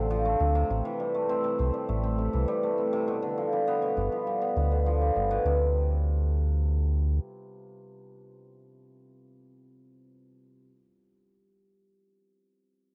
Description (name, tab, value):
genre	folktronica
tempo	101 BPM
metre	4/4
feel	straight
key	unclear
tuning	A4 = 440 Hz
part	cimbalom	arpeggios	0.0-10.7 s	B2 to C4	-30 LUFS	equal	cassette tape, plate reverb, analog delay
part	round analog bass	bass	0.0-7.2 s	G1 to D2	-28 LUFS	equal	transformer saturation
room	light reverb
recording	home recording on cassette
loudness	-27 LUFS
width	mono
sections	0.0-5.5 A section; 5.5-7.8 B section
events	none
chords	0.0 Dm7; 0.7 Am7; 3.1 G7; 5.5 Csus2/D